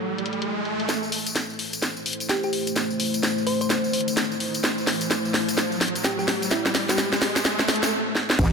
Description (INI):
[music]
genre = bass house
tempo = 128 BPM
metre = 4/4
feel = swing 61% on 16ths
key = A minor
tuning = A4 = 440 Hz
[part]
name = deep dark ambient pad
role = sustained chords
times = 0.0-8.5 s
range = A3 to C5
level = -28 LUFS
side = left 1 dB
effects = chorus, built-in reverb, sidechain pumping
[part]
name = riser and impact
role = sound effects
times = 0.0-8.5 s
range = none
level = -30 LUFS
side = equal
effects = none
[part]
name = garage drum kit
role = drums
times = 0.2-8.5 s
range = crash cymbal, hi-hat, snare drum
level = -24 LUFS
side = equal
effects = low-pass filter on hats, low-pass filter on snare, low-pass filter on cymbals
[part]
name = tambourine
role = percussion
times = 0.9-8.5 s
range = none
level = -33 LUFS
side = left 3 dB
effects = none
[part]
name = thumb-piano-like synth pluck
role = melody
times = 2.3-7.4 s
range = E4 to C5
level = -31 LUFS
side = right 1 dB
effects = chorus, ping-pong delay
[part]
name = wobble bass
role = bass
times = 8.4-8.5 s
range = A1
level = -20 LUFS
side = right 1 dB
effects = chorus, tube saturation, sidechain pumping
[part]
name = electronic kick drum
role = drums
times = 8.4-8.5 s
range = none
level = -22 LUFS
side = equal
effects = none
[sound]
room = moderate lush hall reverb, RT60 2.2 s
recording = none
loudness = -21 LUFS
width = side -5 dB against mid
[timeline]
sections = 0.9-8.4 A section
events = riser 0.0-0.9, 0.9-7.9; build-up 0.9-8.4; drum fill 0.9-7.9, 8.2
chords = 0.0 A5; 0.9 Am